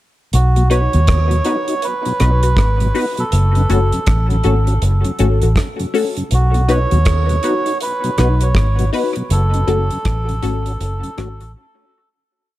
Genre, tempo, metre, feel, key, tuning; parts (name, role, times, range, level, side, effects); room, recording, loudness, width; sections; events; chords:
dub reggae; 80 BPM; 4/4; swing 62% on 16ths; F# dorian; A4 = 439 Hz
melodica; melody; 0.3-11.5 s; F#4 to C#5; -22 LUFS; right 3 dB; dub echo
vintage muted fingered electric bass; bass; 0.3-11.5 s; F#1 to D#2; -14 LUFS; equal
damped 70s drum kit; drums; 0.3-11.5 s; hi-hat, kick drum, rim click; -21 LUFS; equal
mellow tonewheel organ; accompaniment; 0.6-11.3 s; F#2 to F#4; -24 LUFS; left 1 dB; chorus vibrato, slow rotary speaker, dub echo
filtered dub chord stab; stabs; 0.7-11.5 s; C#4 to B4; -23 LUFS; left 5 dB; phaser, dub echo
studio reverb; echo-heavy mix; -13 LUFS; side -15 dB against mid
0.3-12.3 A section
fade-out 9.3-12.3; break 11.5-12.3
0.3 B; 3.3 F#m; 6.3 B; 9.3 F#m